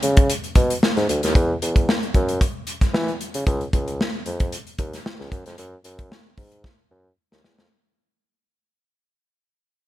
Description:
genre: polished 1980s jazz-funk pop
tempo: 113 BPM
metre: 4/4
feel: swing 54% on 16ths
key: unclear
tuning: A4 = 440 Hz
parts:
  - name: mellow bassoon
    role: bass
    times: 0.0-7.7 s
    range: C#2 to E3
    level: -24 LUFS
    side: equal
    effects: none
  - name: modern studio drum kit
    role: drums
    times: 0.0-7.7 s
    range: hi-hat, kick drum, snare drum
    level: -20 LUFS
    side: equal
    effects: none
room: light reverb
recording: none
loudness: -19 LUFS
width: side -15 dB against mid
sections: 0.0-7.7 A section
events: fade-out 0.0-7.7; drum fill 6.6-7.7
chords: none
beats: 0.29 0.82 | 1.35 1.88 2.41 2.94 | 3.46 3.99 4.52 5.05 | 5.58 6.11 6.64 7.17

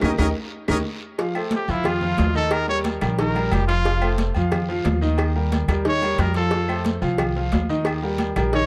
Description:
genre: latin, salsa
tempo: 180 BPM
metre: 4/4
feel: straight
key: unclear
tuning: A4 = 441 Hz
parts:
  - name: brilliant trumpet section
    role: melody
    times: 0.0-0.8 s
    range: Bb4 to Eb5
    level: -34 LUFS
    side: equal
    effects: none
  - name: bright upright piano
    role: accompaniment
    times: 0.0-8.7 s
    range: Eb3 to F5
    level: -28 LUFS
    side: equal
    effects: none
  - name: upright bass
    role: bass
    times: 0.0-8.7 s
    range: F1 to F2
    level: -26 LUFS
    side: equal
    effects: none
  - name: claves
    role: percussion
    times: 0.0-8.5 s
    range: none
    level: -37 LUFS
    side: equal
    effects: none
  - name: congas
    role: percussion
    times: 0.0-8.7 s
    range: none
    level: -31 LUFS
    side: equal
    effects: none
  - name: cowbell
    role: percussion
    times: 0.0-8.7 s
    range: none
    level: -32 LUFS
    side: equal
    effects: none
  - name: guiro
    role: percussion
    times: 0.0-8.7 s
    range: none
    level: -44 LUFS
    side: equal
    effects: none
  - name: timbales and agogo bells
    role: percussion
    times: 0.0-8.5 s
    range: none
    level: -35 LUFS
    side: equal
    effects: none
  - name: bright trumpet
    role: melody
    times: 1.6-8.7 s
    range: E4 to Db5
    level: -28 LUFS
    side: equal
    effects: none
room: little or no reverb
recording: dark, warm production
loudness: -22 LUFS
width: mono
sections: 0.0-1.2 A section; 1.2-8.7 B section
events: band accent 0.0-1.2; drum fill 0.2-1.2; trumpet solo 1.2-8.7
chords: 0.0 Eb; 1.2 F; 2.5 Eb; 3.9 F; 5.2 Eb7; 6.5 F; 7.9 Eb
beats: 0.18 0.52 0.85 | 1.18 1.52 1.85 2.18 | 2.52 2.85 3.19 3.52 | 3.85 4.19 4.52 4.86 | 5.19 5.52 5.86 6.19 | 6.53 6.86 7.20 7.53 | 7.87 8.20 8.53

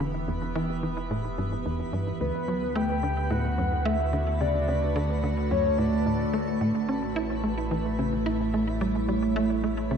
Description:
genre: ambient, sequencer-driven space music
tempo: 109 BPM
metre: 4/4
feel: straight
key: unclear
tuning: A4 = 440 Hz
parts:
  - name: evolving wavetable pad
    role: sustained chords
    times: 0.0-10.0 s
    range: A2 to B5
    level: -30 LUFS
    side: right 2 dB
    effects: chorus, built-in reverb, phaser, shimmer reverb
  - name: tight sequencer bass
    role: riff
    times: 0.0-10.0 s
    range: D2 to E4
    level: -30 LUFS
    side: equal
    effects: analog chorus, shimmer reverb, tape echo
  - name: warm sub bass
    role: bass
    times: 0.0-10.0 s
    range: E1 to D2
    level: -32 LUFS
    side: equal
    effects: tube saturation
  - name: twinkling granular texture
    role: texture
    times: 0.0-10.0 s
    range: B4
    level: -40 LUFS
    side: right 3 dB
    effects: built-in reverb, shimmer reverb
  - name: soft octave-layered synth lead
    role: melody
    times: 2.2-6.3 s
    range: B4 to G5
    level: -30 LUFS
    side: left 2 dB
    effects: chorus, phaser, shimmer reverb, tape echo
room: wet concert hall reverb, RT60 2.1 s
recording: dark, warm production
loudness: -24 LUFS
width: side -7 dB against mid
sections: 0.0-10.0 A section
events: none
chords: 0.0 Em; 2.2 D; 6.6 A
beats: | 0.00 0.55 1.10 1.66 | 2.21 2.76 3.31 3.86 | 4.41 4.96 5.51 6.06 | 6.61 7.16 7.71 8.26 | 8.81 9.36 9.91

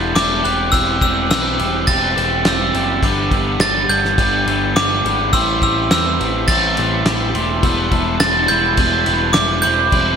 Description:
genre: indie rock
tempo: 104 BPM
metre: 4/4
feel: straight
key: unclear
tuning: A4 = 442 Hz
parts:
  - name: glockenspiel with brass mallets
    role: melody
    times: 0.0-10.2 s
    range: D6 to A6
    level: -18 LUFS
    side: right 2 dB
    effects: digital delay
  - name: glockenspiel with hard plastic mallets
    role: second line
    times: 0.0-10.2 s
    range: C6 to F#6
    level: -28 LUFS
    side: right 4 dB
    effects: none
  - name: raw garage guitar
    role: riff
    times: 0.0-10.2 s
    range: E2 to G4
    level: -23 LUFS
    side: right 6 dB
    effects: overdrive, lush chorus, digital delay
  - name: twelve-string electric guitar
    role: riff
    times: 0.0-10.2 s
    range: E2 to G4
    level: -23 LUFS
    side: left 10 dB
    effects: lush chorus
  - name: growling picked electric bass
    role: bass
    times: 0.0-10.2 s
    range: E1 to E2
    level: -22 LUFS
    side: equal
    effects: overdrive
  - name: cloth-damped thuddy drum kit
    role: drums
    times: 0.2-10.1 s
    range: crash cymbal, kick drum, snare drum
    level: -19 LUFS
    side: left 1 dB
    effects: gated reverb
room: moderate lush hall reverb, RT60 1.9 s, studio ambience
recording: bright 1980s-style digital production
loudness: -14 LUFS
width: side -7 dB against mid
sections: 0.0-10.2 A section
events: none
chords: 0.4 C/E; 3.0 G6; 5.3 Am7; 7.6 Em7; 9.6 C/E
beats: 0.15 | 0.73 1.31 1.88 2.46 | 3.03 3.61 4.18 4.76 | 5.33 5.91 6.48 7.06 | 7.63 8.20 8.78 9.35 | 9.92

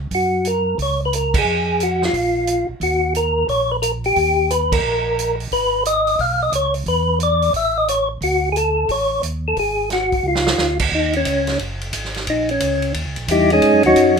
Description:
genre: soul jazz organ trio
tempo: 178 BPM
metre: 4/4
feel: swing 64% on 8ths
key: F# major, Eb minor from 10.9 s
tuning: A4 = 440 Hz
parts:
  - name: mellow tonewheel organ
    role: bass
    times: 0.0-14.2 s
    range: Gb1 to Ab2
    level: -24 LUFS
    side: right 1 dB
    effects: chorus vibrato, stopped rotary speaker
  - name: percussive tonewheel organ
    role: melody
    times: 0.1-14.2 s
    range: Gb3 to E#5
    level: -17 LUFS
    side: left 1 dB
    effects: slow rotary speaker
  - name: vintage drum kit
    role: drums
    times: 0.1-14.2 s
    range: crash cymbal, hi-hat, kick drum, ride cymbal, snare drum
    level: -24 LUFS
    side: right 3 dB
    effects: none
room: moderate studio ambience, RT60 0.5 s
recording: minimal, uncompressed stereo recording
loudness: -16 LUFS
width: side -5 dB against mid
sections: 0.1-10.9 A section; 10.9-14.2 B section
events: band accent 1.3, 4.7; drum fill 10.2-10.6; tonewheel organ solo 10.9-14.2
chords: 0.1 F#; 1.5 Fm; 2.1 A#5; 2.8 D#m; 5.5 G#madd11; 6.9 E5; 7.5 A; 8.2 D5; 9.6 F#sus2/G#; 10.2 C#; 10.9 Ebm7; 12.3 Bbmadd11; 12.9 Eb7b9; 13.6 Ab7sus4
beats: | 0.11 0.45 0.79 1.12 | 1.46 1.80 2.14 2.47 | 2.81 3.15 3.49 3.82 | 4.16 4.50 4.84 5.17 | 5.51 5.85 6.19 6.53 | 6.86 7.20 7.54 7.88 | 8.22 8.55 8.89 9.23 | 9.57 9.90 10.24 10.58 | 10.92 11.26 11.60 11.93 | 12.27 12.61 12.95 13.29 | 13.62 13.96

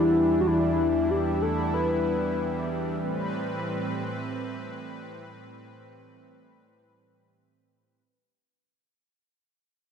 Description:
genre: synthwave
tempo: free time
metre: none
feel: none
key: unclear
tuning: A4 = 440 Hz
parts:
  - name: soft octave-layered synth lead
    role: melody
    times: 0.0-2.7 s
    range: E4 to B4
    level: -25 LUFS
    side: left 2 dB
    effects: chorus, cassette tape, ping-pong delay
  - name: brassy analog pad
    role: sustained chords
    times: 0.0-8.0 s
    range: E2 to F#5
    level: -29 LUFS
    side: right 1 dB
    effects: chorus
room: wet lush hall reverb, RT60 2.2 s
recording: bright 1980s-style digital production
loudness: -24 LUFS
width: side -7 dB against mid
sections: 0.0-8.1 A section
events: fade-out 0.0-8.1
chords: 0.0 Em7; 3.0 Am7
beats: free time

